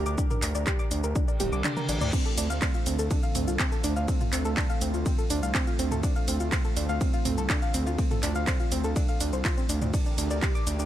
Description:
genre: melodic techno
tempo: 123 BPM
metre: 4/4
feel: straight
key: D minor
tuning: A4 = 440 Hz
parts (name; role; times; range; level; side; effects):
- lush unison pad; sustained chords; 0.0-10.9 s; D3 to Bb4; -35 LUFS; right 2 dB; chorus, sidechain pumping
- soft round pluck; arpeggios; 0.0-10.8 s; C4 to D6; -32 LUFS; equal; chorus, sidechain pumping, ping-pong delay
- gritty driven synth bass; bass; 0.0-10.9 s; D1 to D2; -29 LUFS; equal; sidechain pumping
- techno drum kit; drums; 0.1-10.9 s; crash cymbal, handclaps, hi-hat, ride cymbal, shaker, toms; -32 LUFS; right 1 dB; none
- electronic kick drum; drums; 0.2-10.5 s; none; -27 LUFS; equal; none
- reverse cymbal; sound effects; 1.4-2.1 s; none; -38 LUFS; left 1 dB; none
room: digital ambience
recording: none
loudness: -24 LUFS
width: side -12 dB against mid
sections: 0.0-10.9 A section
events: reverse cymbal 1.4-2.1; drum fill 1.4-2.1; kick drops out 1.6-2.1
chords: 0.0 Gm; 2.1 Dm7; 9.9 Gm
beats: | 0.18 0.67 1.16 1.64 | 2.13 2.62 3.11 3.60 | 4.08 4.57 5.06 5.55 | 6.03 6.52 7.01 7.50 | 7.99 8.47 8.96 9.45 | 9.94 10.42

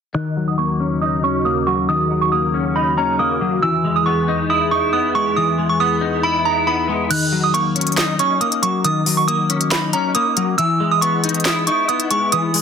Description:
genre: hip hop, trap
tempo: 138 BPM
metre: 4/4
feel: half-time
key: Eb phrygian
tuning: A4 = 440 Hz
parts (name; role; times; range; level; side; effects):
- delicate synth tine bell; melody; 0.1-12.6 s; Bb5 to Gb6; -19 LUFS; right 4 dB; chorus, low-pass filter, digital delay
- semi-hollow electric guitar; accompaniment; 0.1-12.6 s; Eb3 to E4; -19 LUFS; left 4 dB; ensemble chorus, low-pass filter
- sweeping resonant pad; sustained chords; 0.1-7.1 s; Eb2 to G#4; -25 LUFS; right 2 dB; chorus, phaser, low-pass filter
- trap drum kit; drums; 7.1-12.6 s; crash cymbal, handclaps, hi-hat, snare drum; -21 LUFS; left 1 dB; none
room: light reverb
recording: dense, heavily limited modern master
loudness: -15 LUFS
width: side -7 dB against mid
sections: 0.1-7.1 A section; 7.1-12.6 B section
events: filter sweep 0.1-7.1; kick muted 7.1-12.6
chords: 0.1 Ebm7; 3.6 Emaj7; 7.1 Ebm7; 10.6 Emaj7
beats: | 0.15 0.58 1.02 1.45 | 1.89 2.32 2.76 3.19 | 3.63 4.06 4.50 4.93 | 5.37 5.80 6.24 6.67 | 7.11 7.54 7.97 8.41 | 8.85 9.28 9.71 10.15 | 10.58 11.02 11.45 11.89 | 12.32

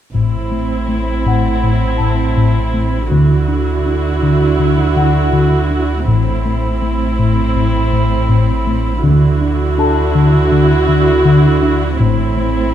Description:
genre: cinematic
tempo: 81 BPM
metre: 4/4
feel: straight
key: A dorian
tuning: A4 = 441 Hz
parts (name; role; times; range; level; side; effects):
- warm chamber viola section; accompaniment; 0.1-12.7 s; C4 to F#4; -17 LUFS; right 2 dB; none
- round analog bass; riff; 0.1-12.6 s; A2 to D4; -15 LUFS; left 2 dB; none
- warm chamber cello section; bass; 0.1-12.7 s; A2 to D3; -21 LUFS; right 6 dB; none
- warm chamber double bass section; bass; 0.1-12.7 s; A1 to D2; -23 LUFS; right 4 dB; none
- sub bass with octave; drone; 0.1-12.7 s; A1 to D2; -18 LUFS; equal; none
- small celesta; texture; 1.3-12.0 s; A4 to A5; -22 LUFS; left 7 dB; none
room: moderate scoring stage reverb, RT60 1.5 s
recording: dark, warm production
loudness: -11 LUFS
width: side -10 dB against mid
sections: 0.1-12.7 A section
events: none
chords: 0.1 Am; 3.1 Dadd9; 6.1 Am; 9.0 Dadd9; 12.0 Am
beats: | 0.15 0.89 1.63 2.37 | 3.11 3.85 4.59 5.33 | 6.08 6.82 7.56 8.30 | 9.04 9.78 10.52 11.26 | 12.00 12.74

